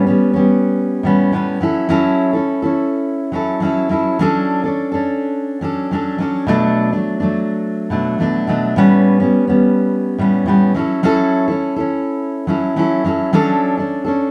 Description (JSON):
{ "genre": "indie pop", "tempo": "105 BPM", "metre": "4/4", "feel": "swing 55% on 16ths", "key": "D major", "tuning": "A4 = 440 Hz", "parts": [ { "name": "fingerpicked steel-string acoustic guitar", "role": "solo", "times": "0.0-14.3 s", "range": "A2 to A4", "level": "-16 LUFS", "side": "equal", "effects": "warbly pitch drift" } ], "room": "moderate studio reverb, RT60 0.5 s", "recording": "band playing live in one room", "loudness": "-16 LUFS", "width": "mono", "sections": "0.0-14.3 A section", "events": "none", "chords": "0.0 A9; 1.6 F#m7; 4.2 Dmaj7/F#; 6.5 Bm7; 8.8 A9; 10.8 F#m7; 13.3 Dmaj7/F#" }